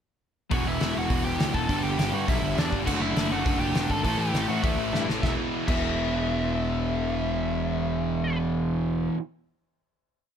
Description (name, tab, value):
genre	punk rock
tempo	203 BPM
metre	4/4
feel	straight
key	E minor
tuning	A4 = 438 Hz
part	biting lead guitar	melody	0.5-8.4 s	D4 to A5	-31 LUFS	left 2 dB	overdrive
part	distorted electric guitar	riff	0.5-9.2 s	E2 to D4	-33 LUFS	left 1 dB	overdrive
part	raw garage guitar	riff	0.5-9.2 s	E2 to D4	-32 LUFS	left 12 dB	overdrive
part	sludgy distorted guitar	riff	0.5-9.2 s	E2 to D4	-30 LUFS	right 11 dB	overdrive
part	fuzz picked electric bass	bass	0.5-9.1 s	E1 to A2	-30 LUFS	equal	overdrive
part	loose indie drum kit	drums	0.5-5.8 s	crash cymbal, hi-hat, kick drum, snare drum	-29 LUFS	equal	none
room	little or no reverb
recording	none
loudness	-24 LUFS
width	side -8 dB against mid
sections	0.5-5.2 chorus; 5.2-7.6 final chord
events	drum fill 4.9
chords	0.5 Em; 1.7 G5; 2.9 D/F#; 4.0 A5; 5.2 E5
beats	| 0.51 0.80 1.10 1.39 | 1.69 1.98 2.28 2.57 | 2.87 3.16 3.45 3.75 | 4.04 4.34 4.64 4.93 | 5.23 5.53 5.83 6.12 | 6.42 6.72 7.02 7.31